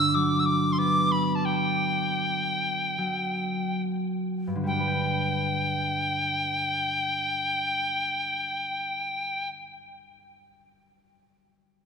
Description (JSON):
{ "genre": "celtic folk, Celtic slow air", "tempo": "35-48 BPM", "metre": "4/4", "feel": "rubato", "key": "G major", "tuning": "A4 = 440 Hz", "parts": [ { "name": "bright tin whistle", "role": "melody", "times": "0.0-9.5 s", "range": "G5 to E6", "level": "-26 LUFS", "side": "left 1 dB", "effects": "none" }, { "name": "concert harp", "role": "accompaniment", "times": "0.0-9.7 s", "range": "G2 to G5", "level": "-28 LUFS", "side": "right 1 dB", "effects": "none" } ], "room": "wet church reverb, RT60 3.3 s", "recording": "minimal, uncompressed stereo recording", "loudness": "-24 LUFS", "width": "side -6 dB against mid", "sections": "0.0-4.7 A section; 4.7-11.1 B section", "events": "slowing down 0.0-4.7", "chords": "0.0 Gmaj7; 4.7 G", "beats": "0.12 1.44 2.98 | 4.67 6.31 7.89 9.45" }